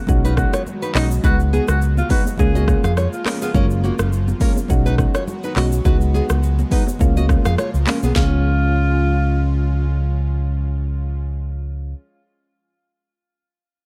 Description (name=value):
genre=afrobeats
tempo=104 BPM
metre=4/4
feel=swing 55% on 16ths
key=Db mixolydian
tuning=A4 = 441 Hz
part: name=airy breathy pad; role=sustained chords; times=0.0-11.2 s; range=Db3 to Gb4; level=-33 LUFS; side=equal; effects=chorus
part: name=soft electric-piano-like synth keys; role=accompaniment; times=0.1-11.9 s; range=F3 to Gb4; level=-29 LUFS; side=equal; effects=chorus
part: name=fingered electric bass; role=bass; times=0.1-11.9 s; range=Gb1 to F2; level=-20 LUFS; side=equal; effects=none
part: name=afro-pop drum kit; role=drums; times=0.1-8.3 s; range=handclaps, hi-hat, kick drum, rim click, shaker, snare drum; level=-22 LUFS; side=equal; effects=none
part: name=congas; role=percussion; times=0.1-8.4 s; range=none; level=-33 LUFS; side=equal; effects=none
part: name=nylon-string guitar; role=riff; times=0.2-9.9 s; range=Bb3 to F5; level=-29 LUFS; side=equal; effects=digital delay
part: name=breathy alto saxophone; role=melody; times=1.0-3.5, 8.2-9.9 s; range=Eb4 to Ab4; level=-29 LUFS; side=equal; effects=digital delay
room=little or no reverb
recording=dark, warm production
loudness=-18 LUFS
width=mono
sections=0.0-8.2 A section; 8.2-10.5 B section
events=none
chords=0.1 Cb6; 1.2 Db7sus4; 2.4 Bbm7/Db; 3.5 Gbmaj7; 4.7 Cb6; 5.9 Db7sus4; 7.0 Bbm7/Db; 8.2 Db